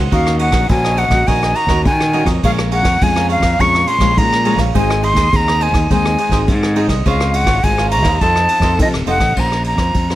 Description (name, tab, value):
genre	samba and choro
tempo	104 BPM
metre	4/4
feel	straight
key	unclear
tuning	A4 = 440 Hz
part	cavaquinho	accompaniment	0.0-9.4 s	Eb4 to Bb5	-24 LUFS	right 6 dB	none
part	nylon-string guitar	accompaniment	0.0-10.2 s	Ab2 to C5	-22 LUFS	left 3 dB	none
part	growling fingered electric bass	bass	0.0-10.2 s	Eb1 to F3	-18 LUFS	equal	overdrive
part	jazz flute	melody	0.1-10.2 s	Eb5 to Db6	-16 LUFS	equal	none
part	vintage brush drum kit	drums	0.1-10.2 s	crash cymbal, kick drum, ride cymbal, rim click	-18 LUFS	equal	none
room	little or no reverb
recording	close, detailed microphones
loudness	-12 LUFS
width	side -14 dB against mid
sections	0.0-9.4 A section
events	none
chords	0.1 Ebm7; 2.4 Bbm7; 4.7 Ab; 7.1 Dbmaj7; 8.2 F7; 9.4 Bbmadd9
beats	| 0.12 0.70 1.28 1.86 | 2.43 3.01 3.59 4.17 | 4.75 5.33 5.90 6.48 | 7.06 7.64 8.22 8.79 | 9.37 9.95